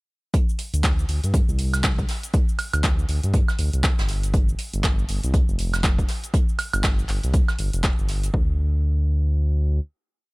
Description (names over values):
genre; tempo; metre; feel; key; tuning
deep house; 120 BPM; 4/4; swing 59% on 16ths; unclear; A4 = 441 Hz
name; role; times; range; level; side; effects
electronic kick drum; drums; 0.3-8.5 s; none; -21 LUFS; equal; overdrive
punchy analog drum machine; drums; 0.3-8.3 s; handclaps, hi-hat, shaker, woodblock; -28 LUFS; right 2 dB; overdrive
soft brush drum kit; drums; 0.3-8.3 s; hi-hat, snare drum; -36 LUFS; right 2 dB; sidechain pumping on hats, high-pass filter on hats, high-pass filter on snare, high-pass filter on room
smooth gliding synth bass; bass; 0.7-9.8 s; F1 to G2; -22 LUFS; equal; sidechain pumping
room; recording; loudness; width
little or no reverb; none; -20 LUFS; side -25 dB against mid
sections
0.3-8.3 drop; 8.3-10.3 final note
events
drop 0.3-8.3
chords
none